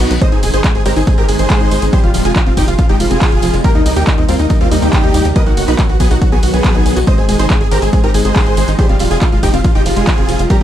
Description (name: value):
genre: uplifting trance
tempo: 140 BPM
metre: 4/4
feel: straight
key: Ab major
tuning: A4 = 439 Hz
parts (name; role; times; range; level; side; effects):
- big supersaw lead; melody; 0.0-10.6 s; B3 to Eb5; -18 LUFS; right 2 dB; sidechain pumping, dub echo
- plucky unison lead; second line; 0.0-10.6 s; Eb5 to Eb6; -27 LUFS; right 1 dB; sidechain pumping, dub echo
- wide unison pluck; arpeggios; 0.0-10.6 s; F3 to C5; -20 LUFS; left 2 dB; sidechain pumping, dub echo
- tight sequencer bass; bass; 0.0-10.6 s; Eb1 to Eb2; -17 LUFS; equal; sidechain pumping
- punchy analog drum machine; drums; 0.0-10.6 s; handclaps, hi-hat, ride cymbal; -23 LUFS; right 1 dB; none
- supersaw pad; sustained chords; 0.1-10.6 s; C3 to F#4; -23 LUFS; right 1 dB; phaser, sidechain pumping
- tambourine; percussion; 0.1-10.6 s; none; -31 LUFS; left 2 dB; none
- clear concert grand piano; second line; 0.2-10.6 s; G3 to C5; -25 LUFS; right 1 dB; dub echo
- electronic kick drum; drums; 0.2-10.6 s; none; -13 LUFS; equal; none
room: little or no reverb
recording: dark, warm production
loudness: -10 LUFS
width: side -11 dB against mid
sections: 0.0-10.6 A section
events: none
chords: 0.2 Ab; 1.9 Fmadd9; 3.6 Eb6; 5.4 B; 7.1 Ab; 8.8 Fmadd9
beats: | 0.21 0.64 1.07 1.50 | 1.93 2.36 2.79 3.21 | 3.64 4.07 4.50 4.93 | 5.36 5.79 6.21 6.64 | 7.07 7.50 7.93 8.36 | 8.79 9.21 9.64 10.07 | 10.50